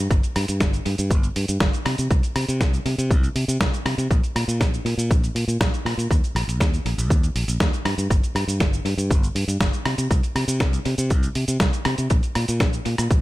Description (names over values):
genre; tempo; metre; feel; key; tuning
nu-disco, nu disco; 120 BPM; 4/4; straight; Eb major; A4 = 440 Hz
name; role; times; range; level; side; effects
modern bright fingered electric bass; bass; 0.0-13.2 s; G1 to C3; -23 LUFS; equal; none
dusty soul sampler-style drum kit; drums; 0.1-13.2 s; hi-hat, rim click, shaker, snare drum; -26 LUFS; equal; studio reverb, tape echo
electronic kick drum; drums; 0.1-13.2 s; none; -20 LUFS; equal; studio reverb
room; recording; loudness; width
digital ambience; echo-heavy mix; -19 LUFS; side -17 dB against mid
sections
0.0-13.2 A section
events
none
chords
none